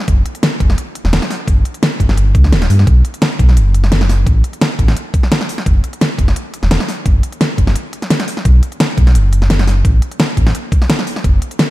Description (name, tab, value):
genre	liquid drum and bass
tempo	172 BPM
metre	4/4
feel	straight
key	B minor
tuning	A4 = 439 Hz
part	pop drum kit	drums	0.0-11.7 s	hi-hat, snare drum	-17 LUFS	equal	studio reverb
part	sub bass with octave	bass	0.1-11.4 s	D1 to G2	-11 LUFS	equal	none
part	electronic kick drum	drums	0.1-11.3 s	none	-13 LUFS	equal	studio reverb
room	digital ambience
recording	none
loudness	-11 LUFS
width	side -17 dB against mid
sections	0.0-11.7 A section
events	break 7.8-8.5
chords	none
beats	| 0.08 0.43 0.78 1.13 | 1.48 1.82 2.17 2.52 | 2.87 3.22 3.57 3.92 | 4.27 4.62 4.96 5.31 | 5.66 6.01 6.36 6.71 | 7.06 7.41 7.75 8.10 | 8.45 8.80 9.15 9.50 | 9.85 10.20 10.54 10.89 | 11.24 11.59